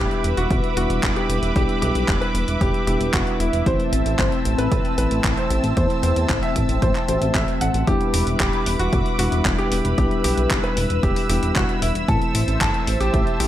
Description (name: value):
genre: italo disco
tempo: 114 BPM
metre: 4/4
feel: straight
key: E minor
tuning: A4 = 439 Hz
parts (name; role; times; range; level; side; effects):
- clear baby grand piano; melody; 0.0-13.5 s; E4 to F#5; -26 LUFS; equal; ping-pong delay
- lush unison pad; sustained chords; 0.0-13.5 s; C4 to E6; -26 LUFS; equal; chorus, phaser
- mellow tine electric piano; stabs; 0.0-13.5 s; E3 to F#4; -27 LUFS; left 2 dB; fast stereo tremolo
- chorused synth bass; bass; 0.0-13.5 s; D1 to E2; -23 LUFS; equal; tube saturation
- clean 12-bit digital drum machine; drums; 0.1-13.5 s; handclaps, hi-hat; -27 LUFS; equal; gated reverb
- electronic kick drum; drums; 0.5-13.2 s; none; -24 LUFS; equal; none
room: light reverb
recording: none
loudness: -18 LUFS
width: side -12 dB against mid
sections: 0.0-13.5 A section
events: none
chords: 0.0 Em7; 3.7 Am; 7.9 Em7; 12.1 Am